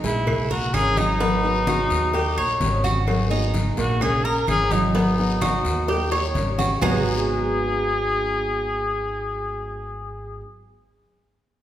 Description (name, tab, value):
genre	latin, Cuban son and guajira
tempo	128 BPM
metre	4/4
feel	straight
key	G# minor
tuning	A4 = 437 Hz
part	nylon-string guitar	second line	0.0-10.4 s	F#3 to C#4	-30 LUFS	right 4 dB	none
part	picked steel-string acoustic guitar	accompaniment	0.0-10.5 s	G#2 to G#4	-29 LUFS	left 2 dB	none
part	Cuban tres	arpeggios	0.0-10.4 s	G#3 to C#5	-27 LUFS	right 3 dB	none
part	upright bass	bass	0.0-10.4 s	G#1 to D#2	-27 LUFS	equal	none
part	congas	percussion	0.0-6.9 s	none	-30 LUFS	equal	none
part	cowbell and bongos	percussion	0.0-6.9 s	none	-32 LUFS	left 2 dB	none
part	guiro	percussion	0.0-6.9 s	none	-36 LUFS	left 4 dB	none
part	breathy trumpet	melody	0.1-10.4 s	D#4 to A#4	-24 LUFS	left 2 dB	none
part	claves	percussion	0.3-6.9 s	none	-37 LUFS	right 3 dB	none
room	wet recital hall reverb, RT60 1.5 s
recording	recorded in a church or concert hall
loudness	-19 LUFS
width	side -11 dB against mid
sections	0.0-6.8 A section; 6.8-10.6 B section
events	drum fill 5.9-6.8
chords	0.3 A#m7b5; 1.2 G#m7; 2.1 D#7; 3.1 G#m7; 4.0 A#m7b5; 4.9 G#m7; 5.9 D#7; 6.8 G#m7